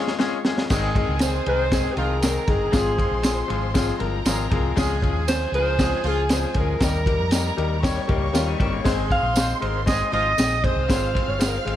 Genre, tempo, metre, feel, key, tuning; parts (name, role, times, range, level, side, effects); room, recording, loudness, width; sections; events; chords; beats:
uptempo 1960s-style soul; 118 BPM; 4/4; straight; Ab major; A4 = 440 Hz
warm studio violin section; second line; 0.0-11.8 s; Ab4 to F6; -32 LUFS; right 2 dB
clear concert grand piano; accompaniment; 0.0-11.8 s; Eb3 to Eb5; -27 LUFS; left 7 dB; tube saturation
crunchy breakbeat drum kit; drums; 0.1-11.8 s; crash cymbal, kick drum, ride cymbal, snare drum; -24 LUFS; equal
warm horn section; second line; 0.7-10.3 s; F3 to C5; -32 LUFS; right 3 dB
hollow-body short-scale fingered electric bass; bass; 0.7-11.8 s; G1 to F2; -26 LUFS; equal
tambourine; percussion; 0.7-11.5 s; -34 LUFS; right 7 dB
breathy alto saxophone; melody; 1.2-11.7 s; G4 to F5; -25 LUFS; right 1 dB
electric guitar through a small old amp; riff; 8.1-9.0 s; Db3 to G4; -32 LUFS; left 7 dB
studio ambience; -19 LUFS; side -12 dB against mid
0.7-11.8 A section
break 0.0-0.7; drum fill 0.0-0.7
0.0 Db; 0.7 Ab; 2.7 Fm/Ab; 4.8 Db; 6.8 Eb; 8.9 Ab; 10.9 Fm
0.20 | 0.71 1.22 1.73 2.23 | 2.74 3.25 3.76 4.27 | 4.78 5.29 5.80 6.30 | 6.81 7.32 7.83 8.34 | 8.85 9.36 9.87 10.38 | 10.89 11.40